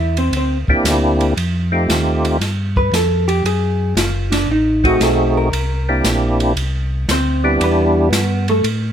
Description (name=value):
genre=soul jazz organ trio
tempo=116 BPM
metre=4/4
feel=swing 68% on 8ths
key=C major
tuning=A4 = 439 Hz
part: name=vintage hollow-body jazz guitar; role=accompaniment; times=0.0-8.6 s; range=A3 to E5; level=-19 LUFS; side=equal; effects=none
part: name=mellow tonewheel organ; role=bass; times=0.0-8.9 s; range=F#1 to A2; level=-18 LUFS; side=equal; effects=slow rotary speaker
part: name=open jazz drum kit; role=drums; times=0.2-8.8 s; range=hi-hat, kick drum, ride cymbal, snare drum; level=-22 LUFS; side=equal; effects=none
part: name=percussive tonewheel organ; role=melody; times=0.7-8.1 s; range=G3 to Ab4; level=-16 LUFS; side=equal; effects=slow rotary speaker, chorus vibrato
room=light reverb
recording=close, detailed microphones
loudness=-14 LUFS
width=side -9 dB against mid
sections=0.0-8.9 A section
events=hollow-body jazz guitar solo 0.0-8.9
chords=0.0 C9; 1.4 F9; 3.4 F#dim7; 5.5 C9; 7.6 Em7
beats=0.33 0.85 | 1.37 1.89 2.40 2.92 | 3.44 3.96 4.48 5.00 | 5.52 6.04 6.56 7.08 | 7.60 8.12 8.64